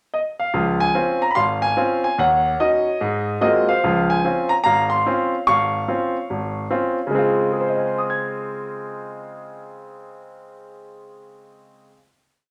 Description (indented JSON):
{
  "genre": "solo jazz",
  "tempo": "146 BPM",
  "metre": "4/4",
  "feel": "swing 64% on 8ths",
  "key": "Db major",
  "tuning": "A4 = 439 Hz",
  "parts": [
    { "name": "clear concert grand piano", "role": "solo", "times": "0.1-12.1 s", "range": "Ab1 to Ab6", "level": "-21 LUFS", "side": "equal", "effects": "none" }
  ],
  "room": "wet large studio reverb, RT60 0.8 s",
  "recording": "none",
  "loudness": "-20 LUFS",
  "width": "mono",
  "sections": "0.0-0.5 pickup bar; 0.5-7.1 A section; 7.1-10.4 final chord",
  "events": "none",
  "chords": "0.0 N.C.; 0.5 Dbmaj7; 2.2 Ebm7; 3.0 Ab13; 3.8 Dbmaj7",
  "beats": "0.11 | 0.52 0.94 1.35 1.76 | 2.17 2.59 3.00 3.41 | 3.82 4.23 4.64 5.05 | 5.46 5.88 6.29 6.70 | 7.11 7.52 7.93 8.34 | 8.75 9.16 9.57 9.98"
}